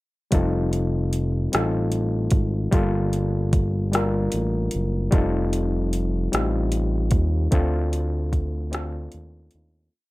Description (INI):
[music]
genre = slow six-eight R&B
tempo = 50 BPM (dotted quarters)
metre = 6/8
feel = straight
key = unclear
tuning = A4 = 441 Hz
[part]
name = overdriven reed electric piano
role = accompaniment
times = 0.3-9.9 s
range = G3 to Bb4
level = -26 LUFS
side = left 2 dB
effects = plate reverb
[part]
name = smooth synth bass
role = bass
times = 0.3-9.9 s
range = F1 to Eb2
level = -24 LUFS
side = equal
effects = none
[part]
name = smooth R&B drum kit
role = drums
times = 0.3-9.7 s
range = hi-hat, kick drum, rim click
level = -22 LUFS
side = equal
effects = none
[sound]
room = light reverb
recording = none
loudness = -20 LUFS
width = side -20 dB against mid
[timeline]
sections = 0.3-9.9 verse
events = fade-out 7.5-9.9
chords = 0.3 F9; 2.7 Gm7; 5.1 F9; 7.5 Dm7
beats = | 0.32 1.52 | 2.72 3.92 | 5.12 6.32 | 7.52 8.72